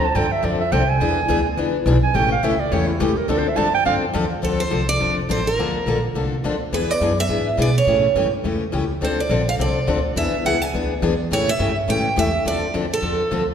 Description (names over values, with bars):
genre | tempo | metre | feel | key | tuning
acoustic string swing (jazz manouche) | 209 BPM | 4/4 | swing 57% on 8ths | D minor | A4 = 444 Hz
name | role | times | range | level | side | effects
mellow clarinet | second line | 0.0-4.0 s | E4 to A5 | -21 LUFS | right 5 dB | none
picked steel-string acoustic guitar | accompaniment | 0.0-13.4 s | C#3 to A4 | -22 LUFS | left 4 dB | none
upright bass | bass | 0.0-13.5 s | F1 to B2 | -23 LUFS | equal | none
picked steel-string acoustic guitar | melody | 4.4-13.5 s | A4 to G#5 | -22 LUFS | right 4 dB | none
room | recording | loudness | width
wet concert hall reverb, RT60 1.9 s | recorded in a church or concert hall | -18 LUFS | side -8 dB against mid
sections
0.0-4.4 A section; 4.4-13.5 B section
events
clarinet solo 0.0-4.4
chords
0.0 Dm7; 1.0 E7; 2.1 A7; 3.3 Dm9; 4.4 Dm7; 5.6 Bbmaj7; 6.7 E7; 7.9 A7; 9.0 Dm7; 10.2 E7; 11.3 A7; 12.5 Dm9